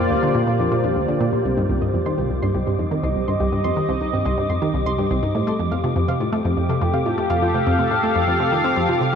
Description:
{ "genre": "ambient, sequencer-driven space music", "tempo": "123 BPM", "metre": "4/4", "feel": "straight", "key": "C dorian", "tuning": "A4 = 440 Hz", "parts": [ { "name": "sweeping resonant pad", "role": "sustained chords", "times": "0.0-9.2 s", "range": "Bb3 to F5", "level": "-22 LUFS", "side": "left 1 dB", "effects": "chorus" }, { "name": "soft round pluck", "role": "arpeggios", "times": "0.0-9.2 s", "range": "A3 to C6", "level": "-28 LUFS", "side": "right 1 dB", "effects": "chorus, auto-pan, cassette tape, ping-pong delay" }, { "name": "resonant blip pluck", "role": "riff", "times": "0.0-9.1 s", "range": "C2 to C4", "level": "-21 LUFS", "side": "equal", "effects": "chorus, ping-pong delay" }, { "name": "wind-like tuned noise texture", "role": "texture", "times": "0.0-9.2 s", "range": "C5 to D6", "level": "-33 LUFS", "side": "left 2 dB", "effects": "built-in reverb" } ], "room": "wet huge ambient reverb, RT60 8.0 s", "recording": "none", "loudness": "-18 LUFS", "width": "side -7 dB against mid", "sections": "0.0-9.2 A section", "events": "none", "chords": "0.0 Bb6; 1.4 Cm; 5.3 Fadd9" }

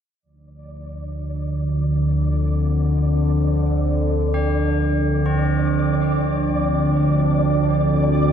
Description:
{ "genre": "dark ambient drone", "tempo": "free time", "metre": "none", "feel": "none", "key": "D minor", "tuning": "A4 = 440 Hz", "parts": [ { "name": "sweeping resonant pad", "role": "sustained chords", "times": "0.2-8.3 s", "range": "F3 to D4", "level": "-27 LUFS", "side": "right 1 dB", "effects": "chorus" }, { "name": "analog drone", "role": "drone", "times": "0.7-8.3 s", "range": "D2 to D3", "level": "-18 LUFS", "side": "equal", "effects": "chorus" }, { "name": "flickering grainy texture", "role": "texture", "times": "0.7-8.3 s", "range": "D5", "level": "-28 LUFS", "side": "left 1 dB", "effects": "built-in reverb" }, { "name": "tubular bells", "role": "arpeggios", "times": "4.3-8.3 s", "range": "C4 to G4", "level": "-30 LUFS", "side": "left 3 dB", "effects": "ping-pong delay" } ], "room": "wet cathedral reverb, RT60 5.5 s", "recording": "in a vast, echoing space", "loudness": "-17 LUFS", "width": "side -8 dB against mid", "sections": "0.2-8.3 A section", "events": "fade-in on analog synth pad 0.2-8.3; fade-in on synth texture 0.2-8.3; fade-in on tubular bells 0.2-8.3", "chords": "0.2 Dm" }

